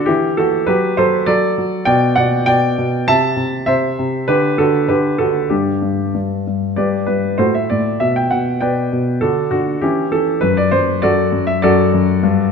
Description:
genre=classical-period piano sonatina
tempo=99 BPM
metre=2/4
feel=rubato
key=G major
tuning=A4 = 440 Hz
part: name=warm grand piano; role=solo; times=0.0-12.5 s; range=F#2 to A5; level=-14 LUFS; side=equal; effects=none
room=moderate recital hall reverb, RT60 1.3 s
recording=none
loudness=-14 LUFS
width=side -6 dB against mid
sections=0.0-6.8 A section; 6.8-12.5 A section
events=none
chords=0.1 Emadd9; 0.7 D/F#; 1.9 G/B; 3.1 Am/C; 4.3 G/D; 5.5 G5; 6.8 G; 7.4 Amadd11; 8.0 G/B; 9.2 D; 9.8 C#dim/E; 10.4 D/F#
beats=0.08 | 0.68 1.28 | 1.88 2.47 | 3.07 3.67 | 4.27 4.89 | 5.51 6.15 | 6.78 7.39 | 7.99 8.60 | 9.20 9.81 | 10.41 11.02 | 11.62 12.21

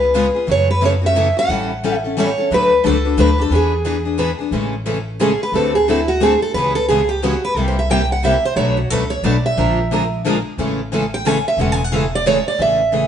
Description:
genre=acoustic string swing (jazz manouche)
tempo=178 BPM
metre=3/4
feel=swing 62% on 8ths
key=A major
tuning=A4 = 440 Hz
part: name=picked steel-string acoustic guitar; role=melody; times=0.0-13.1 s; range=E4 to G#5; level=-17 LUFS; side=right 2 dB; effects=none
part: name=picked steel-string acoustic guitar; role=accompaniment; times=0.0-13.0 s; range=B2 to B4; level=-21 LUFS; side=left 4 dB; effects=none
part: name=upright bass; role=bass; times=0.0-13.1 s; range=E1 to F#2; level=-22 LUFS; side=equal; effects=none
part: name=picked steel-string acoustic guitar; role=accompaniment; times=0.1-12.4 s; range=B2 to B4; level=-24 LUFS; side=right 2 dB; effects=none
room=moderate stone room reverb, RT60 1.0 s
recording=band playing live in one room, nothing above 10.6 kHz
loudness=-15 LUFS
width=side -9 dB against mid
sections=0.0-4.5 A section; 4.5-12.6 B section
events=steel-string acoustic guitar solo 4.5-13.1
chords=0.5 F#m7; 1.5 A7; 2.5 D6; 3.5 E7; 4.5 Amaj7; 5.5 D7; 6.5 C#m7; 7.6 C7; 8.6 Bm7; 9.6 Bb7#11; 10.6 Amaj7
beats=0.14 | 0.48 0.82 1.15 | 1.49 1.83 2.16 | 2.50 2.84 3.17 | 3.51 3.85 4.18 | 4.52 4.86 5.20 | 5.53 5.87 6.21 | 6.54 6.88 7.22 | 7.55 7.89 8.23 | 8.56 8.90 9.24 | 9.57 9.91 10.24 | 10.58 10.92 11.25 | 11.59 11.93 12.26 | 12.60 12.94

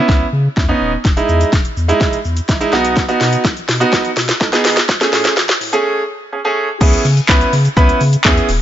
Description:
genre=dance-pop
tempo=125 BPM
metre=4/4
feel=straight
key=C# minor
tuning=A4 = 440 Hz
part: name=clear grand piano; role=accompaniment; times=0.0-8.5 s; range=G#3 to B4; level=-16 LUFS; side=right 2 dB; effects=sidechain pumping
part: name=warm sub bass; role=bass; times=0.1-8.6 s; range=D#1 to C#3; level=-17 LUFS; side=equal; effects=sidechain pumping
part: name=house drum kit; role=drums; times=0.1-8.6 s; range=crash cymbal, handclaps, hi-hat, kick drum, shaker, snare drum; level=-14 LUFS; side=equal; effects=overdrive
room=light reverb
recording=high-pass filter, nothing above 7.6 kHz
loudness=-12 LUFS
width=side -11 dB against mid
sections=0.0-6.8 A section; 6.8-8.6 B section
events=build-up 0.0-6.8; drum fill 0.0-5.8; filter sweep 0.0-6.8; break 5.8-6.8; drop 6.8-8.6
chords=0.0 C#m7; 1.1 Emaj7; 2.7 B; 4.9 Amaj7; 6.8 C#m7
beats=0.09 0.57 | 1.05 1.53 2.01 2.49 | 2.97 3.45 3.93 4.41 | 4.89 5.37 5.85 6.33 | 6.81 7.29 7.77 8.25

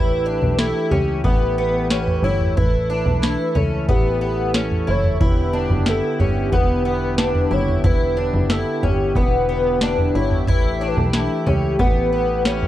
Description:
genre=dream pop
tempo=91 BPM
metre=4/4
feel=straight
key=unclear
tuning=A4 = 440 Hz
part: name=warm velvety synth lead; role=melody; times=0.0-12.7 s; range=G4 to C#5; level=-23 LUFS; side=equal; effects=chorus, tape echo
part: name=pipe organ, principal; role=sustained chords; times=0.0-12.7 s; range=D3 to A4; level=-25 LUFS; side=equal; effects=none
part: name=fingerpicked twelve-string acoustic guitar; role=arpeggios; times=0.0-12.7 s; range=B3 to E4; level=-24 LUFS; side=left 3 dB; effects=analog chorus, tape echo, plate reverb
part: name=plucky analog bass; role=bass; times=0.0-12.7 s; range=E1 to C#2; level=-23 LUFS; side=equal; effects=none
part: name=booming analog drum machine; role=drums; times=0.4-12.7 s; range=kick drum, snare drum, toms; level=-20 LUFS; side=equal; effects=none
part: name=glassy synth bell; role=texture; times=5.9-6.7 s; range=B4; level=-37 LUFS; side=right 3 dB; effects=none
room=moderate studio reverb, RT60 0.5 s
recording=dark, warm production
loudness=-16 LUFS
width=side -13 dB against mid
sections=0.0-12.7 A section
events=none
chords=0.0 A7; 5.2 Em7; 10.5 A7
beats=0.59 1.25 1.91 | 2.57 3.23 3.88 4.54 | 5.20 5.86 6.52 7.18 | 7.84 8.50 9.16 9.82 | 10.48 11.14 11.80 12.46

